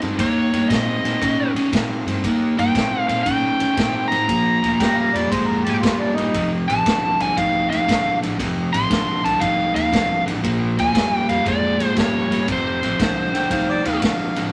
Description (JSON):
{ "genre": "electric blues shuffle", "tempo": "117 BPM", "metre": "4/4", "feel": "swing 67% on 8ths", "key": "unclear", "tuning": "A4 = 440 Hz", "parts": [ { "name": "overdriven electric guitar", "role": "riff", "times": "0.0-14.5 s", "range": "F2 to Db4", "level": "-24 LUFS", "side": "equal", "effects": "none" }, { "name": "upright bass", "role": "bass", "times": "0.0-14.5 s", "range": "F1 to Db3", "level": "-32 LUFS", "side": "equal", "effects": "none" }, { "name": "swinging big-band drum kit", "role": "drums", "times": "0.0-14.4 s", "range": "kick drum, ride cymbal, snare drum", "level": "-27 LUFS", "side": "equal", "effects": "none" }, { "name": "biting lead guitar", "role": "melody", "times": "0.2-14.0 s", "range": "C5 to C6", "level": "-24 LUFS", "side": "equal", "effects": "overdrive" }, { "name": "warm harmonica", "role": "second line", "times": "4.8-6.5, 13.3-14.4 s", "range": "D4 to G5", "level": "-27 LUFS", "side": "equal", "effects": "overdrive" } ], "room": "wet small room ambience, RT60 0.5 s", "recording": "none", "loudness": "-20 LUFS", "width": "mono", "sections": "0.0-14.5 A section", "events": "none", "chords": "0.0 Eb7; 4.3 Bb7(no3); 6.3 F7; 10.4 Bb7; 12.5 F7" }